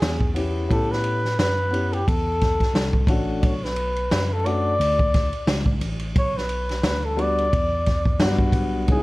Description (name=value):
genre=hip hop, jazz-hop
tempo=88 BPM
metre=4/4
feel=swing 58% on 16ths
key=unclear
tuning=A4 = 442 Hz
part: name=mellow flugelhorn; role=melody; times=0.0-9.0 s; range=G4 to D5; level=-25 LUFS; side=equal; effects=slapback echo
part: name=mellow tine electric piano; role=bass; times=0.0-9.0 s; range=A1 to A2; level=-26 LUFS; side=equal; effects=medium stereo tremolo
part: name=vintage drum kit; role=drums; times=0.0-9.0 s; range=hi-hat, kick drum, ride cymbal, snare drum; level=-23 LUFS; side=equal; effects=none
part: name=dark concert grand piano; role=accompaniment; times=0.3-9.0 s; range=F#3 to G4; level=-26 LUFS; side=left 2 dB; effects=none
room=light reverb, small room ambience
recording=dark, warm production, vinyl crackle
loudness=-19 LUFS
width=side -20 dB against mid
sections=0.0-9.0 A section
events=none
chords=0.0 E6; 0.7 A9; 2.7 Amadd11; 3.4 Bm7; 6.2 Em7/B